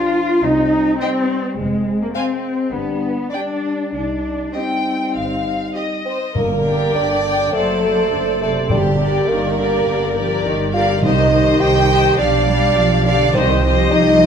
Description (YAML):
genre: quick classical-period movement for symphony orchestra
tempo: 103 BPM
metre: 4/4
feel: straight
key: C minor, G minor from 6.4 s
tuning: A4 = 440 Hz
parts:
  - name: mellow French horn section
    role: sustained chords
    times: 0.0-6.0 s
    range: F3 to Eb4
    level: -23 LUFS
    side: left 4 dB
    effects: none
  - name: warm chamber cello section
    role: bass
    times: 0.0-14.3 s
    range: C3 to F4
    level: -21 LUFS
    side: right 1 dB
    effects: none
  - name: warm chamber double bass section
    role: bass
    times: 0.4-14.3 s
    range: F1 to C2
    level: -22 LUFS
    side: right 3 dB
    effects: none
  - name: rich chamber violin section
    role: melody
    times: 1.0-14.3 s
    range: D5 to Ab5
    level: -24 LUFS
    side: left 4 dB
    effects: none
  - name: rich chamber violin section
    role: second line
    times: 1.0-14.3 s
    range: G4 to G5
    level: -22 LUFS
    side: left 2 dB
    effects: none
  - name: rich chamber viola section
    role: accompaniment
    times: 1.0-14.3 s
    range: G4 to D5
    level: -23 LUFS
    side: left 3 dB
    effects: none
  - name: dark bassoon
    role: accompaniment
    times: 6.1-14.3 s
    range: G3 to G4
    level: -18 LUFS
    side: right 2 dB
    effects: none
  - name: timpani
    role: percussion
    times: 6.4-14.2 s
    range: G2 to C3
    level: -23 LUFS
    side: left 1 dB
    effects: none
room: wet recital hall reverb, RT60 1.4 s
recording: minimal, uncompressed stereo recording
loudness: -15 LUFS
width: side -7 dB against mid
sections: 0.0-6.4 A section; 6.4-14.3 B section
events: none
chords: 0.4 Cm; 1.6 Fm; 2.7 G; 3.9 Cm; 6.4 Gm; 7.5 D7/F#; 8.7 Gm; 11.0 Cm; 12.2 G7/B; 13.3 Cm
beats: 0.43 1.01 | 1.58 2.15 2.74 3.33 | 3.93 4.54 5.16 5.76 | 6.36 6.95 7.53 8.12 | 8.71 9.29 9.87 10.45 | 11.03 11.61 12.18 12.76 | 13.34 13.92